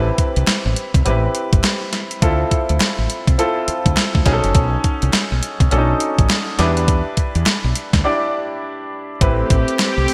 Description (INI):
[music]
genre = R&B, new jack swing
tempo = 103 BPM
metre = 4/4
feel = swing 62% on 16ths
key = A minor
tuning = A4 = 440 Hz
[part]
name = warm grand piano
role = accompaniment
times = 0.0-10.1 s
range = C4 to D5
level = -23 LUFS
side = equal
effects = subtle chorus
[part]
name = woody fretless electric bass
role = bass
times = 0.0-10.1 s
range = F#1 to E2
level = -21 LUFS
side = equal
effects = none
[part]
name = clean 12-bit digital drum machine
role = drums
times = 0.2-10.1 s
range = hi-hat, kick drum, snare drum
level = -20 LUFS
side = equal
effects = none
[part]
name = group handclap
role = percussion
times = 0.5-10.0 s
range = none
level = barely audible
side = none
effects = none
[part]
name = phased analog pad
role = sustained chords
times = 9.2-10.1 s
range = A3 to G4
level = -23 LUFS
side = equal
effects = phaser, chorus
[sound]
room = moderate lush hall reverb, RT60 1.9 s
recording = bright 1980s-style digital production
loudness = -17 LUFS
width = mono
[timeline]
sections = 0.0-9.2 A section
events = break 8.0-9.2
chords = 0.0 Am7; 2.2 Dm7; 4.3 B7; 6.6 Em7; 9.2 Am7